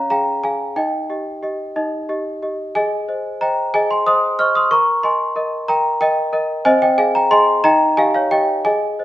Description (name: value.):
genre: classical, lullaby for celesta.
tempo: 61 BPM (dotted quarters).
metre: 6/8.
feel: straight.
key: unclear.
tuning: A4 = 440 Hz.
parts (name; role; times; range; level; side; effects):
worn celesta; solo; 0.0-9.0 s; C4 to F6; -15 LUFS; equal; none.
room: moderate recital hall reverb, RT60 1.5 s.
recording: minimal, uncompressed stereo recording.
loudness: -15 LUFS.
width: side -14 dB against mid.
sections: 0.0-9.0 A section.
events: none.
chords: 0.0 Db6; 0.8 Eb; 2.8 Ab; 4.7 Eb/Bb; 6.6 Ab/C; 7.6 Eb.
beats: | 0.76 1.76 | 2.75 3.74 | 4.71 5.68 | 6.65 7.63 | 8.65.